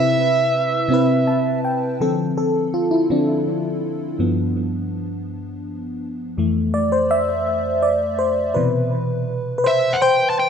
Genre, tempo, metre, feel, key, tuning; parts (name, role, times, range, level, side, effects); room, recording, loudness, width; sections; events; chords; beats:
R&B; 55 BPM (dotted quarters); 6/8; straight; C major; A4 = 439 Hz
dark smooth lead guitar; melody; 0.0-1.6, 9.7-10.5 s; E5 to A5; -19 LUFS; right 3 dB; overdrive, analog delay
FM electric piano with soft pad layer; accompaniment; 0.0-10.5 s; F2 to A5; -18 LUFS; left 1 dB; chorus, analog delay
light reverb; echo-heavy mix; -17 LUFS; side -7 dB against mid
0.0-2.0 A section; 2.0-10.5 B section
FM electric piano fill 0.9-2.0; FM electric piano solo 2.0-10.5
0.0 Cmaj7; 2.0 Dm7; 4.2 G7; 6.4 Fmaj7; 8.5 Cmaj7
0.90 | 2.00 3.09 | 4.18 5.27 | 6.36 7.45 | 8.54 9.63